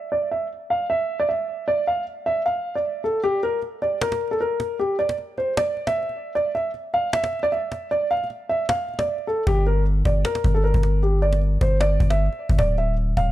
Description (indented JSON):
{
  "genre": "hip hop, trap",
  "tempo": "154 BPM",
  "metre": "4/4",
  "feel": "half-time",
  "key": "G dorian",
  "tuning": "A4 = 442 Hz",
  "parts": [
    { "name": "dark concert grand piano", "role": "melody", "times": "0.0-13.3 s", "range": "G4 to F5", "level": "-22 LUFS", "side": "right 1 dB", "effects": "low-pass filter" },
    { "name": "cajon", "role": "drums", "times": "3.2-13.3 s", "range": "none", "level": "-29 LUFS", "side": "equal", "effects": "none" },
    { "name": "long sustained 808-style bass", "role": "bass", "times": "9.5-13.3 s", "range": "D1 to G1", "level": "-19 LUFS", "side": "equal", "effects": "none" }
  ],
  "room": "studio reverb",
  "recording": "none",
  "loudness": "-20 LUFS",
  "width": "side -14 dB against mid",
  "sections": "0.0-3.2 A section; 3.2-13.3 B section",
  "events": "kick muted 3.2-9.5",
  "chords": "0.0 N.C.; 9.5 Gm; 12.6 Dmadd9"
}